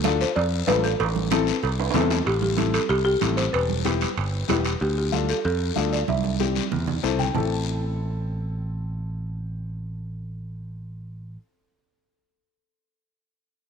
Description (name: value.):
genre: latin, cumbia.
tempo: 188 BPM.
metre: 4/4.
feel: straight.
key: A minor.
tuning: A4 = 441 Hz.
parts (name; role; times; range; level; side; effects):
folk marimba with medium mallets; melody; 0.0-11.4 s; E4 to A5; -27 LUFS; equal; none.
dark upright piano; accompaniment; 0.0-11.4 s; B3 to G5; -27 LUFS; left 10 dB; none.
picked electric bass; bass; 0.0-11.4 s; E1 to F2; -26 LUFS; right 1 dB; none.
congas; percussion; 0.0-7.4 s; none; -30 LUFS; right 14 dB; none.
guiro; percussion; 0.0-7.4 s; none; -33 LUFS; left 12 dB; none.
cowbell and timbales; percussion; 0.1-4.8 s; none; -31 LUFS; right 13 dB; none.
room: moderate plate reverb, RT60 3.5 s.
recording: 1960s-style stereo with parts hard left and right.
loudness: -22 LUFS.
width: side -6 dB against mid.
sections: 0.0-2.3 A section; 2.3-7.4 B section; 7.4-9.9 C section.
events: drum fill 1.8-2.3, 6.1-7.4; upright piano fill 6.9-7.4.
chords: 0.0 Dm; 1.0 Am; 3.5 Em; 4.8 Dm; 6.1 C; 7.4 Am.